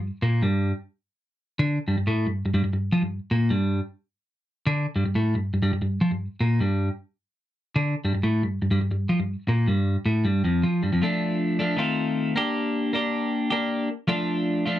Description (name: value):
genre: rock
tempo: 156 BPM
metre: 4/4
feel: straight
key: G minor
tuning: A4 = 440 Hz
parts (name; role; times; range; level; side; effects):
- twelve-string electric guitar; solo; 0.0-14.8 s; F2 to G4; -22 LUFS; equal; none
room: moderate booth ambience, RT60 0.2 s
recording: dry, close 1970s-style studio recording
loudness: -22 LUFS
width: side -13 dB against mid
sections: 0.0-11.0 A section; 11.0-14.8 B section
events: none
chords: 0.0 Gm; 11.0 Dm; 11.8 F7; 12.4 Gm; 14.1 Dm